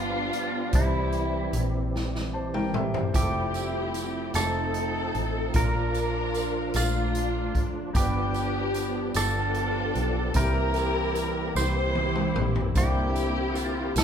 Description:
slow gospel; 50 BPM (dotted quarters); 6/8; straight; A4 = 440 Hz
clean lap steel guitar; melody; 0.0-14.0 s; E4 to C5; -32 LUFS; right 1 dB
warm studio string section; melody; 0.0-14.0 s; G3 to C5; -31 LUFS; left 2 dB
clear baby grand piano; accompaniment; 0.0-14.0 s; G2 to Bb5; -35 LUFS; left 1 dB
percussive tonewheel organ; sustained chords; 0.0-14.0 s; D3 to A4; -33 LUFS; right 3 dB; slow rotary speaker, overdrive, chorus vibrato
fingered electric bass; bass; 0.0-14.0 s; F1 to C2; -30 LUFS; equal
swinging big-band drum kit; drums; 0.3-14.0 s; hi-hat, kick drum, rim click, snare drum, toms; -28 LUFS; equal
dark French horn section; sustained chords; 3.1-14.0 s; D3 to E4; -40 LUFS; left 2 dB
tambourine; percussion; 3.1-14.0 s; -40 LUFS; right 6 dB
moderate large studio reverb, RT60 1.1 s; band playing live in one room; -24 LUFS; side -8 dB against mid
0.0-3.1 A section; 3.1-14.0 B section
drum fill 1.9-3.1, 11.6-12.8
0.0 G7; 0.7 C; 3.1 Fmaj9; 4.3 F7; 5.5 Bbmaj7; 7.9 G7; 10.4 C7; 12.8 C9

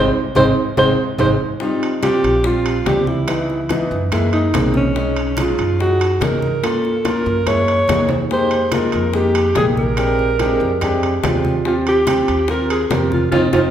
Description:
Afro-Cuban jazz; 144 BPM; 4/4; straight; Eb major; A4 = 444 Hz
mellow alto saxophone; melody; 0.0-13.6 s; Db4 to Db5; -18 LUFS; right 1 dB
clear concert grand piano; accompaniment; 0.0-13.7 s; Fb3 to Bb4; -20 LUFS; left 1 dB
upright bass; bass; 0.0-13.7 s; Ab1 to G2; -23 LUFS; right 1 dB
congas; percussion; 0.4-13.6 s; -26 LUFS; equal
cowbell and bongos; percussion; 0.4-13.6 s; -27 LUFS; left 3 dB
timbales; percussion; 0.4-13.6 s; -26 LUFS; right 4 dB
wet large studio reverb, RT60 1.5 s; band playing live in one room; -14 LUFS; side -10 dB against mid
0.0-1.6 A section; 1.6-13.7 B section
band accent 0.0-1.6, 13.3-13.7; alto saxophone solo 0.0-1.6; drum fill 1.4, 8.1
0.0 Ab; 1.6 Eb69; 3.3 Dbm9; 4.1 Gb9; 5.0 B69; 6.6 Gm7b5; 7.5 Gb9; 8.3 Fm11; 10.0 Bb13; 11.7 Eb69

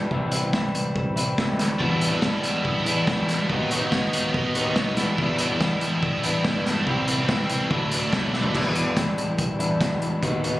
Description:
indie rock; 142 BPM; 4/4; straight; E minor; A4 = 440 Hz
electric guitar through a small old amp; riff; 0.0-10.6 s; E2 to F#4; -26 LUFS; left 2 dB
growling picked electric bass; bass; 0.1-10.6 s; B1 to G2; -29 LUFS; right 1 dB; overdrive
vintage drum kit; drums; 0.1-10.5 s; crash cymbal, hi-hat, kick drum, snare drum, toms; -25 LUFS; equal
scooped high-gain guitar; riff; 1.8-8.6 s; F#3 to E4; -26 LUFS; right 2 dB; distortion, ensemble chorus, slapback echo
light reverb; recorded on a phone in the room, club reverb; -21 LUFS; side -16 dB against mid
0.0-8.6 A section; 8.6-10.6 B section
drum fill 8.3
0.1 C; 1.8 Em7; 3.5 B/D#; 5.0 Em7; 6.9 C; 7.7 Dadd9; 8.6 Em7

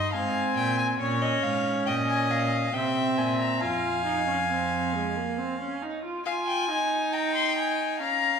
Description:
classical, baroque-style fugue for string quartet; 69 BPM; 3/4; straight; F minor; A4 = 441 Hz
dark violin; melody; 0.0-8.4 s; Db5 to C6; -28 LUFS; left 5 dB
warm violin; second line; 0.0-8.4 s; Db5 to Ab5; -30 LUFS; equal
rich viola; accompaniment; 0.0-8.4 s; Ab3 to F4; -30 LUFS; right 2 dB
rich cello; bass; 0.0-5.8 s; F2 to C3; -31 LUFS; right 3 dB
wet recital hall reverb, RT60 1.5 s; recorded in a church or concert hall; -24 LUFS; side -6 dB against mid
0.0-6.3 A section; 6.3-8.4 B section
0.1 Ab; 1.0 Gdim (rootless); 2.7 C7; 3.6 Fm

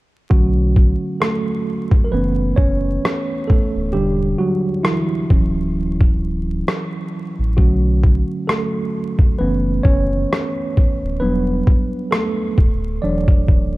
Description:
lo-fi hip hop; 66 BPM; 4/4; swing 57% on 16ths; B minor; A4 = 439 Hz
mellow tine electric piano; accompaniment; 0.3-13.8 s; D3 to D5; -20 LUFS; right 1 dB; medium stereo tremolo, low-pass filter
sub bass with octave; bass; 0.3-13.8 s; D1 to B1; -20 LUFS; equal
boom bap sampler-style drum kit; drums; 0.3-13.7 s; kick drum, rim click; -16 LUFS; equal
little or no reverb; dark, warm production, vinyl crackle; -15 LUFS; side -19 dB against mid
0.3-13.8 A section
hi-hats muted 0.3-13.8; tine electric piano solo 0.3-13.8
0.3 Bm9; 2.1 F#m7; 3.9 Em9; 5.3 Dmaj9; 7.6 Bm9; 9.4 F#m7; 11.2 Em9; 12.6 Dmaj9

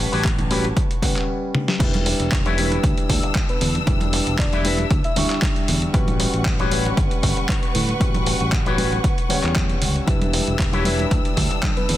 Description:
nu-disco, nu disco; 116 BPM; 4/4; swing 53% on 16ths; E dorian; A4 = 441 Hz
dark grand piano; accompaniment; 0.0-12.0 s; G3 to C#6; -26 LUFS; left 1 dB; sidechain pumping, slapback echo
warm studio string section; sustained chords; 0.0-12.0 s; D4 to E6; -29 LUFS; left 1 dB; sidechain pumping
fingered electric bass; bass; 0.0-12.0 s; E1 to A2; -24 LUFS; equal
electric guitar with an envelope filter; riff; 0.1-11.7 s; E4 to E5; -28 LUFS; left 5 dB; lush chorus, slapback echo
dusty soul sampler-style drum kit; drums; 0.1-12.0 s; crash cymbal, handclaps, hi-hat, snare drum, toms; -26 LUFS; equal
electronic kick drum; drums; 0.2-11.7 s; -22 LUFS; equal; overdrive
congas; percussion; 0.4-12.0 s; -30 LUFS; right 3 dB
soft octave-layered synth lead; melody; 3.5-5.3, 11.8-12.0 s; B4 to E5; -30 LUFS; left 1 dB; chorus, tape echo
light reverb; dense, heavily limited modern master; -18 LUFS; side -14 dB against mid
0.0-1.8 A section; 1.8-12.0 B section
drum fill 1.5; drop 1.8-12.0
0.0 A13; 1.8 Em7; 5.9 A13; 10.1 Em7

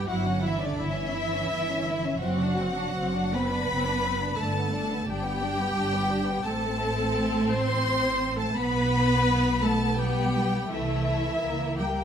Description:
classical, slow romantic movement for string orchestra; 85 BPM; 3/4; rubato; G major; A4 = 439 Hz
warm symphonic violin section; melody; 0.0-12.0 s; A3 to E4; -33 LUFS; left 4 dB
dark chamber violin section; second line; 0.0-12.0 s; D5 to C6; -29 LUFS; left 2 dB
warm studio viola section; accompaniment; 0.0-12.0 s; D4 to C5; -33 LUFS; right 1 dB
dark chamber cello section; bass; 0.0-12.0 s; D3 to C4; -30 LUFS; right 2 dB
warm studio double bass section; bass; 0.1-12.0 s; F#1 to C#2; -30 LUFS; right 2 dB
moderate scoring stage reverb, RT60 1.5 s; -24 LUFS; side -8 dB against mid
0.0-12.0 A section
0.1 Em13/G; 2.2 D7/F#; 4.4 G; 6.4 Am; 8.6 G/B; 10.7 Am/C; 11.4 C#dim7

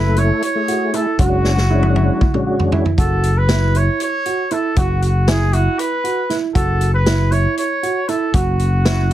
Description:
progressive instrumental, band music in an uneven meter; 235 BPM (eighths); 7/8; straight; A4 = 439 Hz
warm trumpet; melody; 0.0-9.1 s; F#4 to C#5; -21 LUFS; equal
tonewheel organ; accompaniment; 0.0-2.9 s; G#3 to A4; -21 LUFS; left 4 dB; overdrive, chorus vibrato, slow rotary speaker
warm grand piano; arpeggios; 0.0-9.1 s; E4 to F#4; -22 LUFS; right 6 dB
fingered electric bass; bass; 0.0-9.1 s; F#1; -16 LUFS; equal
vintage drum kit; drums; 0.2-9.1 s; hi-hat, kick drum, snare drum, toms; -20 LUFS; equal
little or no reverb; heavily compressed radio sound; -14 LUFS; side -13 dB against mid
0.0-3.0 A section; 3.0-9.1 B section
drum fill 1.4-3.0
0.0 F#m7; 1.2 E13/F#; 3.0 Esus2/F#

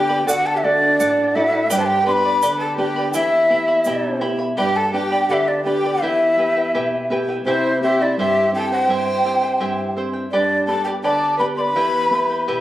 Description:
andean folk, Andean ensemble; 84 BPM; 2/4; straight; A4 = 439 Hz
breathy large quena; melody; 0.0-12.6 s; C5 to C6; -18 LUFS; left 1 dB
dark violin; second line; 0.0-12.6 s; D4 to D5; -24 LUFS; right 1 dB
charango; accompaniment; 0.0-12.6 s; E4 to B5; -25 LUFS; equal
nylon-string guitar; accompaniment; 0.0-12.6 s; E2 to G4; -25 LUFS; right 1 dB
egg shaker; percussion; 0.3-4.0 s; -30 LUFS; right 5 dB
moderate studio reverb, RT60 0.5 s; recorded on a phone in the room, club reverb, compression; -16 LUFS; side -14 dB against mid
0.0-4.6 A section; 4.6-12.6 B section
0.3 D; 1.7 G; 3.1 Em; 4.6 G; 6.0 Em; 7.4 C; 10.3 G; 11.8 Em

